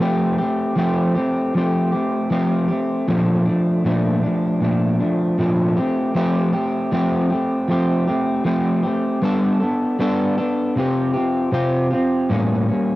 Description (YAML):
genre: indie pop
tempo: 78 BPM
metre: 4/4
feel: swing 55% on 16ths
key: F major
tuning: A4 = 440 Hz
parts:
  - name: electric guitar at the edge of break-up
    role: solo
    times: 0.0-13.0 s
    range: A2 to A4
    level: -17 LUFS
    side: equal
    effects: wide subtle chorus, vibrato effect, cassette tape
room: moderate spring reverb, RT60 2.8 s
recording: home recording on cassette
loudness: -17 LUFS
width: side -17 dB against mid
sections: 0.0-12.3 A section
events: none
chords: 0.0 Fadd9; 3.1 Bbmaj7; 5.8 Fadd9; 9.2 Gadd9; 10.8 Csus4; 12.3 A7b9